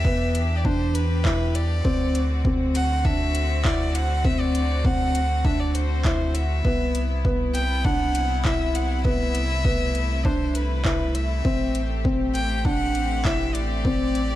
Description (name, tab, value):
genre	piano and strings electronica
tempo	100 BPM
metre	4/4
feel	straight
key	unclear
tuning	A4 = 440 Hz
part	warm violin	melody	0.0-14.4 s	B4 to G5	-29 LUFS	right 1 dB	none
part	clear studio string section	sustained chords	0.0-14.4 s	C3 to G4	-32 LUFS	left 2 dB	sidechain pumping
part	warm sub bass	bass	0.0-14.4 s	A1 to E2	-25 LUFS	equal	sidechain pumping
part	electronic kick drum	drums	0.0-14.0 s	none	-25 LUFS	equal	overdrive, studio reverb
part	felt-muted upright piano	riff	0.1-14.2 s	B3 to E4	-27 LUFS	left 1 dB	ping-pong delay
part	deep house drum kit	drums	0.3-14.3 s	handclaps, hi-hat	-32 LUFS	equal	overdrive, studio reverb
room	light reverb, studio reverb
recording	dark, warm production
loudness	-20 LUFS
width	side -14 dB against mid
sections	0.0-14.4 A section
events	none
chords	0.0 Em7; 1.8 D7; 6.6 Cmaj7; 11.4 Am7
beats	0.05 0.65 1.25 | 1.85 2.45 3.05 3.65 | 4.25 4.85 5.45 6.05 | 6.65 7.25 7.85 8.45 | 9.05 9.65 10.25 10.85 | 11.45 12.05 12.65 13.25 | 13.85